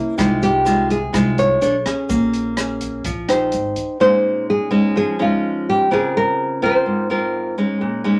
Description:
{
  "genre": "bossa nova",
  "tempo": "126 BPM",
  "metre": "4/4",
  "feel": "straight",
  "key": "unclear",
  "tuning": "A4 = 436 Hz",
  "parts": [
    { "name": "nylon-string guitar", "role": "accompaniment", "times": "0.0-8.2 s", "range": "Ab2 to C#5", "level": "-21 LUFS", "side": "equal", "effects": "none" },
    { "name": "upright bass", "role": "bass", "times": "0.2-3.7 s", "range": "Ab1 to C2", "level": "-29 LUFS", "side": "equal", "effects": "none" },
    { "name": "open jazz drum kit", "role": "drums", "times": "0.2-3.9 s", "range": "hi-hat, kick drum, rim click", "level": "-30 LUFS", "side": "equal", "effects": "none" },
    { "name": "egg shaker", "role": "percussion", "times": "0.2-4.0 s", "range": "none", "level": "-44 LUFS", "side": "equal", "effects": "none" },
    { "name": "nylon-string guitar", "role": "melody", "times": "0.4-7.6 s", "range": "F4 to Db5", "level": "-20 LUFS", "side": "equal", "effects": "none" }
  ],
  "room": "wet small room reverb, RT60 0.5 s",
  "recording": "none",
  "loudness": "-18 LUFS",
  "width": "mono",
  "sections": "0.0-4.0 A section; 4.0-8.2 B section",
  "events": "none",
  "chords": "0.2 Fm7/C; 1.6 Bm9; 2.1 Bbm9; 3.5 Abmaj7; 4.0 Bbm11; 5.9 Dbmaj13"
}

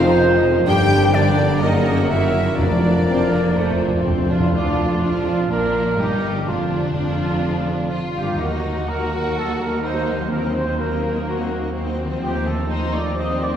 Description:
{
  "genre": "classical, dramatic, fast romantic movement for symphony orchestra",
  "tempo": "125 BPM",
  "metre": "4/4",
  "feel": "straight",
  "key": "Bb major",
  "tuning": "A4 = 440 Hz",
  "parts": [
    { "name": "rich symphonic violin section", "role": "melody", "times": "0.0-13.6 s", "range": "D4 to G5", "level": "-32 LUFS", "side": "left 2 dB", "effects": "none" },
    { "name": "bright concert flute", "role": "second line", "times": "0.0-4.0 s", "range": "D5 to G5", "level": "-25 LUFS", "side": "left 1 dB", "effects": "none" },
    { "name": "rich symphonic violin section", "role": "second line", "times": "0.0-13.6 s", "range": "A3 to Gb4", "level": "-26 LUFS", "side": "left 2 dB", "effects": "none" },
    { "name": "rich symphonic viola section", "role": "accompaniment", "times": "0.0-13.6 s", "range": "D3 to Bb4", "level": "-28 LUFS", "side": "right 1 dB", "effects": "none" },
    { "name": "dark French horn section", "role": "sustained chords", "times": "0.0-4.3 s", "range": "Bb3 to Gb4", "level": "-25 LUFS", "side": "left 3 dB", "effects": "none" },
    { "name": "warm trombone section", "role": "sustained chords", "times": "0.0-4.3 s", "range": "Db3 to Bb3", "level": "-26 LUFS", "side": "right 2 dB", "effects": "none" },
    { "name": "concert harp", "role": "arpeggios", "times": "0.0-13.6 s", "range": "F2 to D6", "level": "-26 LUFS", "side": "left 3 dB", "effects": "none" },
    { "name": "dark trumpet section", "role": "stabs", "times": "0.0-13.5 s", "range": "D4 to Eb5", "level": "-25 LUFS", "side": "right 2 dB", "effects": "none" },
    { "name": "warm symphonic cello section", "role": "bass", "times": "0.0-13.6 s", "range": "D2 to Bb2", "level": "-26 LUFS", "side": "right 2 dB", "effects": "none" },
    { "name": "warm symphonic double bass section", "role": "bass", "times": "0.0-13.6 s", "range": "F1 to Eb2", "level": "-26 LUFS", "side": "right 2 dB", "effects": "none" },
    { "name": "timpani", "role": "percussion", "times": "2.6-4.5 s", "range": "F2", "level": "-24 LUFS", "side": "equal", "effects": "none" }
  ],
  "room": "wet church reverb, RT60 3.2 s",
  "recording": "recorded in a church or concert hall",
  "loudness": "-17 LUFS",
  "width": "side -9 dB against mid",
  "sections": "0.0-4.5 A section; 4.5-13.6 B section",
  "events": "timpani fill 3.6-4.5",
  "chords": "0.0 F5; 0.7 Gm; 1.6 Gb7; 2.6 Bb/F; 3.6 F; 4.5 Bb/F; 8.4 Ebm; 10.3 Cm7b5/Eb; 12.2 F7/Eb"
}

